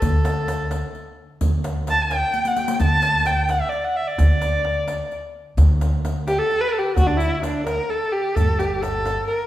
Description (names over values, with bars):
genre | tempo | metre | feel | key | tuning
Persian modal ensemble | 86 BPM (dotted quarters) | 6/8 | straight | D dastgah mahur | A4 = 440 Hz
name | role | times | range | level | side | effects
warm kamancheh | melody | 0.0-9.5 s | D4 to A5 | -21 LUFS | equal | none
upright bass | bass | 0.0-9.2 s | G1 to D2 | -22 LUFS | equal | none
riq | percussion | 0.0-9.2 s | none | -32 LUFS | left 4 dB | none
tombak | percussion | 0.0-9.2 s | none | -24 LUFS | right 1 dB | none
room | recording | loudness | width
wet recital hall reverb, RT60 1.4 s | recorded in a church or concert hall | -18 LUFS | side -14 dB against mid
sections
0.0-8.4 A section; 8.4-9.5 B section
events
drum fill 2.3-2.8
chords
none